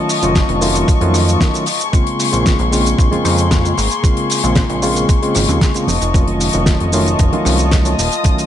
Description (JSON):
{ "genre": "nu-disco, nu disco", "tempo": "114 BPM", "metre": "4/4", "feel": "straight", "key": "Bb minor", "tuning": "A4 = 440 Hz", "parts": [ { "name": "tine electric piano", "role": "accompaniment", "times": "0.0-8.5 s", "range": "Db3 to F4", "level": "-18 LUFS", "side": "equal", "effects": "medium tremolo, sidechain pumping, digital delay" }, { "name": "dark chamber string section", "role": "sustained chords", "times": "0.0-8.5 s", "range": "Bb3 to Eb6", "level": "-20 LUFS", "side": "left 4 dB", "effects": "sidechain pumping" }, { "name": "damped 70s drum kit", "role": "drums", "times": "0.1-8.5 s", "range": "hi-hat, rim click, shaker, snare drum", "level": "-20 LUFS", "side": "left 1 dB", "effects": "small room ambience" }, { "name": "chorused synth bass", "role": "bass", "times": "0.2-8.1 s", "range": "Eb1 to F2", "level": "-17 LUFS", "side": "equal", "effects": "none" }, { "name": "electronic kick drum", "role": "drums", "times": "0.4-8.4 s", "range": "none", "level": "-14 LUFS", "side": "equal", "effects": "small room ambience" }, { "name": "congas", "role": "percussion", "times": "3.1-8.1 s", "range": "none", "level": "-26 LUFS", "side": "right 5 dB", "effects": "none" } ], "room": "little or no reverb", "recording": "nothing above 10.9 kHz", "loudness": "-12 LUFS", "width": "side -10 dB against mid", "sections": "0.0-8.5 A section", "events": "none", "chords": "0.0 F7b9b13; 1.9 Bbm9; 5.9 F7b9b13" }